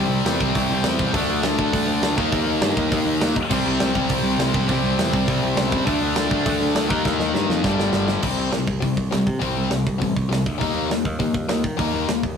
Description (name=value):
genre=punk rock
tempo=203 BPM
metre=4/4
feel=straight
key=unclear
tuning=A4 = 440 Hz
part: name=sludgy distorted guitar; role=riff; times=0.0-12.2 s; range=G2 to Eb4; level=-27 LUFS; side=right 7 dB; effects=overdrive
part: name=tight distorted guitar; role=riff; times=0.0-12.2 s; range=G2 to Eb4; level=-23 LUFS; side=left 7 dB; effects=distortion
part: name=tight distorted guitar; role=riff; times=0.0-8.2 s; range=G2 to Eb4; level=-27 LUFS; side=right 3 dB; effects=distortion
part: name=modern bright picked electric bass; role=bass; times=0.0-12.4 s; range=G1 to Eb3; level=-26 LUFS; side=right 1 dB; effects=none
part: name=tight metal drum kit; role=drums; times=0.3-12.3 s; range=crash cymbal, hi-hat, kick drum, snare drum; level=-25 LUFS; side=right 1 dB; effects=none
room=light reverb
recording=rough rehearsal-room recording, warm saturation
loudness=-18 LUFS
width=side -7 dB against mid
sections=0.0-8.2 A section; 8.2-12.4 B section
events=drum fill 7.0-8.2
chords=0.0 C; 1.1 D5; 2.2 Eb5; 3.5 C5; 5.9 D5; 6.9 Eb; 7.6 G5; 8.2 C5; 10.6 Eb5